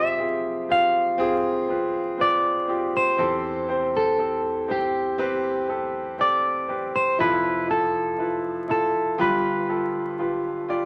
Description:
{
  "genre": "pop",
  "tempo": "60 BPM",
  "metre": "4/4",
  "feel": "straight",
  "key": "unclear",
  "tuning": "A4 = 440 Hz",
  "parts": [
    { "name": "electric guitar at the edge of break-up", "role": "melody", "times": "0.0-10.7 s", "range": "G4 to F5", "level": "-26 LUFS", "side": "equal", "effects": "none" },
    { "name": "clear concert grand piano", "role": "accompaniment", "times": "0.0-10.9 s", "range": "F1 to D5", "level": "-28 LUFS", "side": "equal", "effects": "none" }
  ],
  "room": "moderate club reverb, RT60 0.8 s",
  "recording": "vinyl crackle",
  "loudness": "-24 LUFS",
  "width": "mono",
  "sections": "0.0-10.9 A section",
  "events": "none",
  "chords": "0.0 Fm; 3.2 Am7/E; 7.2 Fmaj7; 9.2 G7"
}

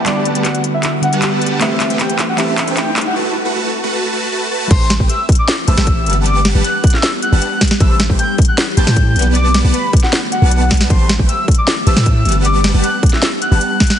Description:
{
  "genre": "future bass",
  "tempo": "155 BPM",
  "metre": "4/4",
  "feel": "half-time",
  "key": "A dorian",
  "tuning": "A4 = 442 Hz",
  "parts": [
    { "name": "glassy digital keys", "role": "accompaniment", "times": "0.0-3.2 s", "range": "D3 to F#5", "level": "-20 LUFS", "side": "right 2 dB", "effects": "chorus, sidechain pumping" },
    { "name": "ethereal airy pad", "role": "sustained chords", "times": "0.0-14.0 s", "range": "D3 to F#5", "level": "-25 LUFS", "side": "left 1 dB", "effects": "ensemble chorus, built-in reverb, sidechain pumping" },
    { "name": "supersaw chords", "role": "riff", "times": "0.0-13.6 s", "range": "G3 to A5", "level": "-21 LUFS", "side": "right 1 dB", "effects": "phaser, sidechain pumping, low-pass filter" },
    { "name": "riser", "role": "sound effects", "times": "1.5-3.2 s", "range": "none", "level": "-27 LUFS", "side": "right 2 dB", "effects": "none" },
    { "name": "soft octave-layered synth lead", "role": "melody", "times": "0.1-14.0 s", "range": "D5 to G6", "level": "-20 LUFS", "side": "left 2 dB", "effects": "chorus, sidechain pumping, ping-pong delay" },
    { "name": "trap drum kit", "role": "drums", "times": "0.1-14.0 s", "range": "crash cymbal, handclaps, hi-hat, snare drum", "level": "-18 LUFS", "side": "equal", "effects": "none" },
    { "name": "long sustained 808-style bass", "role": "bass", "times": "4.7-13.6 s", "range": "G1 to A2", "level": "-14 LUFS", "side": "equal", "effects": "sidechain pumping" },
    { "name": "electronic kick drum", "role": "drums", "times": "4.7-13.9 s", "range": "none", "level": "-13 LUFS", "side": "equal", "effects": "none" }
  ],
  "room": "light reverb, digital ambience",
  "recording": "heavily compressed radio sound, multiband compression, high-pass filter, nothing above 10.5 kHz",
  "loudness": "-11 LUFS",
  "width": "side -10 dB against mid",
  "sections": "0.0-4.7 A section; 4.7-14.0 B section",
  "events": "build-up 0.0-4.7; drum fill 0.0-3.2; filter sweep on supersaw synth 0.0-4.7; filter sweep 0.0-4.7; break 3.2-4.7; drop 4.7-14.0",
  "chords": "0.0 Gmaj7; 1.6 Am7; 3.2 B5; 4.7 Am7; 6.1 Gmaj7; 7.8 Am7; 9.4 Bm7; 10.9 Am7; 12.3 Gmaj7"
}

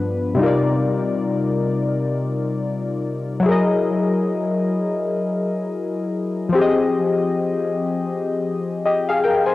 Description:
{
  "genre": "hip hop",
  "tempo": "free time",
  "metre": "none",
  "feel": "none",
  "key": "unclear",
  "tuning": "A4 = 439 Hz",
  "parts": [
    { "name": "warm analog keys", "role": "solo", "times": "0.0-9.5 s", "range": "G2 to Ab5", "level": "-18 LUFS", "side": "left 2 dB", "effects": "chorus, cassette tape, low-pass filter, analog delay" }
  ],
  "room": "moderate spring reverb, RT60 2.6 s",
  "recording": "home recording on cassette",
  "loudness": "-18 LUFS",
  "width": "side -16 dB against mid",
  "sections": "0.4-9.5 A section",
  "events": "none",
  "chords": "0.4 Cm11; 3.5 F#13; 6.5 Fm7"
}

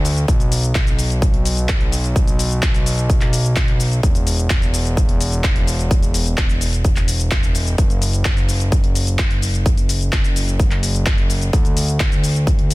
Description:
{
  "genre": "EDM, festival progressive house",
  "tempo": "128 BPM",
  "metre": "4/4",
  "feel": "straight",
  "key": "unclear",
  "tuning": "A4 = 439 Hz",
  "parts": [
    { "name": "fat analog bass", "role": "bass", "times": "0.0-12.7 s", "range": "E1 to D2", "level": "-19 LUFS", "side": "equal", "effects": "sidechain pumping" },
    { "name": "big-room dance drum kit", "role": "drums", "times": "0.0-12.7 s", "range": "handclaps, hi-hat, shaker", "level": "-24 LUFS", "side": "left 2 dB", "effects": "small room ambience" },
    { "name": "electronic kick drum", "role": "drums", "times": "0.3-12.6 s", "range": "none", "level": "-17 LUFS", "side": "equal", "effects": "small room ambience" }
  ],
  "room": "digital ambience",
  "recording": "dense, heavily limited modern master",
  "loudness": "-15 LUFS",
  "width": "side -20 dB against mid",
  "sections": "0.0-12.7 A section",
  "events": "none",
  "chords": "none"
}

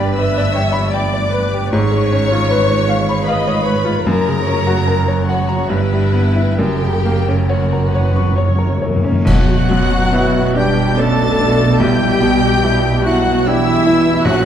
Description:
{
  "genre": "classical, romantic movement for piano and orchestra",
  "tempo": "64-80 BPM",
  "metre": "3/4",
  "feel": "rubato",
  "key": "B minor",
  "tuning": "A4 = 440 Hz",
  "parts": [
    { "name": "bright baby grand piano", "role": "melody", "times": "0.0-14.5 s", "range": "A#1 to C#6", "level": "-19 LUFS", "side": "left 1 dB", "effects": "none" },
    { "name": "rich chamber violin section", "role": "melody", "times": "0.0-14.5 s", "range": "E5 to A6", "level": "-26 LUFS", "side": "left 2 dB", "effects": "none" },
    { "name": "rich chamber violin section", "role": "second line", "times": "0.0-14.5 s", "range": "E4 to A5", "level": "-24 LUFS", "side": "left 4 dB", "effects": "none" },
    { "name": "rich chamber viola section", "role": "accompaniment", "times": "0.0-14.5 s", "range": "E4 to D#5", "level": "-22 LUFS", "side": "equal", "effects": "none" },
    { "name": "rich chamber double bass section", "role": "bass", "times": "0.0-14.5 s", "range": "F#1 to B1", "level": "-20 LUFS", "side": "right 3 dB", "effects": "none" },
    { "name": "warm chamber cello section", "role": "bass", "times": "0.0-14.5 s", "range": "F#2 to B2", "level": "-20 LUFS", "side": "right 2 dB", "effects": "none" },
    { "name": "timpani", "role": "percussion", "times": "4.1-10.5 s", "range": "F#2 to B2", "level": "-21 LUFS", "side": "left 2 dB", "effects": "none" },
    { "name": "cymbal swell, clash cymbals and concert bass drum", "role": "percussion", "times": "6.6-10.9 s", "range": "none", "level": "-21 LUFS", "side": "equal", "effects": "none" },
    { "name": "bright concert flute", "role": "second line", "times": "9.3-14.5 s", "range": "E5 to A5", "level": "-26 LUFS", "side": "left 1 dB", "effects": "none" },
    { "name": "clear oboe", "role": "second line", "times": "9.3-14.5 s", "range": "E4 to A4", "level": "-25 LUFS", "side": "right 2 dB", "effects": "none" },
    { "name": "mellow French horn section", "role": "sustained chords", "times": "9.3-14.5 s", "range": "E3 to A3", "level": "-22 LUFS", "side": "left 4 dB", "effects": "none" },
    { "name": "mellow bassoon", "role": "accompaniment", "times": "10.1-14.5 s", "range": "C#4 to G4", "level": "-22 LUFS", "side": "right 2 dB", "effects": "none" }
  ],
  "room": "wet concert hall reverb, RT60 1.7 s",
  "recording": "dark, warm production",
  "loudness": "-12 LUFS",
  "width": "side -9 dB against mid",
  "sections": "0.0-9.3 A section; 9.3-14.5 B section",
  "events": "timpani fill 6.6-9.3; band accent 9.3-10.1",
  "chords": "0.0 G; 1.7 C#7/G#; 4.1 F#; 5.7 Em/G; 6.6 F#; 9.3 Bm; 11.8 Em9/B"
}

